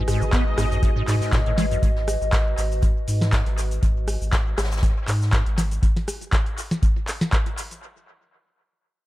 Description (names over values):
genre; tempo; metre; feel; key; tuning
acid house; 120 BPM; 4/4; swing 54% on 16ths; G# minor; A4 = 442 Hz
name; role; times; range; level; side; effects
string machine, full ensemble; sustained chords; 0.0-1.8 s; G#3 to D#5; -31 LUFS; equal; ensemble chorus, sidechain pumping
acid bass, square; riff; 0.0-1.8 s; F#2 to B3; -26 LUFS; equal; ensemble chorus, tape echo
warm sub bass; bass; 0.0-5.8 s; G#1 to G#2; -25 LUFS; equal; sidechain pumping
warbly tape-like pad; texture; 0.0-3.9 s; F#4 to G#5; -31 LUFS; equal; chorus, built-in reverb, sidechain pumping
booming analog drum machine; drums; 0.1-7.8 s; handclaps, hi-hat, rim click, shaker, snare drum; -28 LUFS; equal; small room ambience, tape echo
vintage brush drum kit; drums; 0.1-5.7 s; hi-hat, snare drum; -37 LUFS; left 1 dB; none
electronic kick drum; drums; 0.3-7.4 s; none; -21 LUFS; equal; small room ambience
room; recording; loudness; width
light reverb; echo-heavy mix; -20 LUFS; side -16 dB against mid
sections
0.0-7.8 A section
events
drop 0.0-7.8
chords
0.0 G#m7